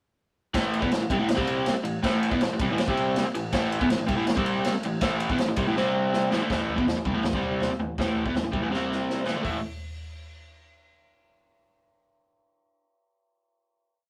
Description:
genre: garage rock duo or trio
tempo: 162 BPM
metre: 4/4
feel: straight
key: unclear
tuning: A4 = 442 Hz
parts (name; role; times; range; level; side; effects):
- crunchy overdriven guitar; riff; 0.5-9.6 s; A2 to C4; -27 LUFS; equal; none
- raw garage drum kit; drums; 0.5-9.5 s; hi-hat, kick drum, ride cymbal, snare drum, toms; -31 LUFS; equal; none
room: wet studio ambience, RT60 0.5 s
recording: rough rehearsal-room recording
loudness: -26 LUFS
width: mono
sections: 0.5-6.5 riff; 6.5-9.4 outro; 9.4-10.9 final chord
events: drum fill 5.8-6.5, 8.7-9.4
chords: 0.5 A5; 1.4 C5; 1.7 A5; 2.9 C5; 3.2 A5; 4.4 C5; 4.7 A5; 5.8 C5; 6.3 A5; 7.3 C5; 7.7 A5; 8.7 C5; 9.3 A5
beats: | 0.54 0.91 1.28 1.66 | 2.03 2.40 2.78 3.15 | 3.52 3.90 4.27 4.64 | 5.02 5.39 5.76 6.13 | 6.50 6.87 7.24 7.61 | 7.98 8.35 8.71 9.08 | 9.45

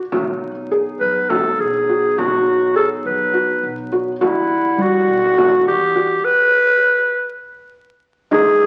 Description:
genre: contemporary instrumental, chamber music in an uneven meter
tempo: 205 BPM (eighths)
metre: 7/8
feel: straight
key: unclear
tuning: A4 = 439 Hz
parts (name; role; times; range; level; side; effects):
- warm woodwind section; sustained chords; 0.1-6.2 s; F#3 to F#5; -29 LUFS; equal; none
- felt-muted upright piano; arpeggios; 0.1-8.7 s; G3 to G#4; -24 LUFS; equal; none
- upright bass; bass; 0.1-8.7 s; B1 to F#2; -40 LUFS; equal; none
- frame drum; percussion; 0.1-8.6 s; none; -30 LUFS; equal; none
- growling clarinet; melody; 1.0-8.7 s; E4 to B4; -17 LUFS; equal; none
room: moderate recital hall reverb, RT60 1.5 s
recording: very old 78 rpm record, vinyl crackle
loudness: -17 LUFS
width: mono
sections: 0.0-8.3 A section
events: none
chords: 0.1 B; 4.2 Emadd9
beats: | 0.12 0.41 0.71 1.01 1.30 1.60 1.89 | 2.18 2.48 2.77 3.06 3.35 3.64 3.93 | 4.22 4.51 4.80 5.09 5.38 5.67 5.96 | 6.25 6.55 6.84 7.14 7.43 7.73 8.02 | 8.32 8.62

